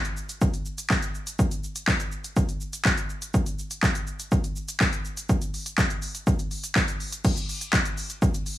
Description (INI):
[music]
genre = pop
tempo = 123 BPM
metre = 4/4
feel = straight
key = none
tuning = none
[part]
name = deep house drum kit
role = drums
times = 0.0-8.6 s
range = crash cymbal, handclaps, hi-hat, kick drum, shaker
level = -24 LUFS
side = equal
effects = overdrive
[part]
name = group handclap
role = percussion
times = 7.7-7.8 s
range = none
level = -37 LUFS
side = left 3 dB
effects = none
[sound]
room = little or no reverb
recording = small room ambience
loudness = -24 LUFS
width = side -14 dB against mid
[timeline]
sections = 0.0-7.2 A section; 7.2-8.6 B section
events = none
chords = none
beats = 0.41 0.90 | 1.39 1.88 2.37 2.85 | 3.34 3.83 4.32 4.81 | 5.29 5.78 6.27 6.76 | 7.25 7.73 8.22